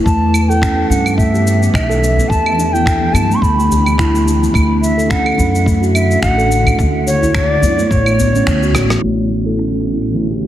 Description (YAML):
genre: organic downtempo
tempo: 107 BPM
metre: 4/4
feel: swing 55% on 16ths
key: A mixolydian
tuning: A4 = 440 Hz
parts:
  - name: granular cloud pad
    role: sustained chords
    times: 0.0-10.5 s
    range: A2 to D6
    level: -22 LUFS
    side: equal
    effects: built-in reverb, sidechain pumping
  - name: steel tongue drum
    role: arpeggios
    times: 0.0-10.4 s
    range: E3 to A4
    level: -17 LUFS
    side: equal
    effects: low-pass filter, tape echo
  - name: bansuri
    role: melody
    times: 0.1-8.7 s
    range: C#5 to C#6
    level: -18 LUFS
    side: equal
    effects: tape echo
  - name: upright bass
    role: bass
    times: 0.1-10.5 s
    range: A1 to G2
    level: -17 LUFS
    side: equal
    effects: none
  - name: electronic kick drum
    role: drums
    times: 0.1-8.6 s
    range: none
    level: -17 LUFS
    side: equal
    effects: none
  - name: electronic shaker, claves, finger snaps and rim click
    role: drums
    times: 0.1-10.5 s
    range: none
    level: -22 LUFS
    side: equal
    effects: none
  - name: udu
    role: percussion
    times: 0.9-8.3 s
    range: none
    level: -20 LUFS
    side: equal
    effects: none
  - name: tine electric piano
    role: accompaniment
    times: 10.1-10.5 s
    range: D3 to E4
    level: -21 LUFS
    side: right 2 dB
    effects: overdrive, fast stereo tremolo, sidechain pumping
room: light reverb, small room ambience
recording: heavily compressed radio sound, low-pass filter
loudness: -11 LUFS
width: side -12 dB against mid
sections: 0.0-9.0 A section; 9.0-10.5 B section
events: band accent 8.5; drum fill 8.7; filter sweep on steel tongue drum 9.0-10.5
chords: 0.1 Em7; 4.5 Dmaj7; 9.0 Asus4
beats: | 0.06 0.62 1.18 1.74 | 2.30 2.86 3.42 3.98 | 4.54 5.10 5.66 6.22 | 6.78 7.34 7.91 8.47 | 9.03 9.59 10.15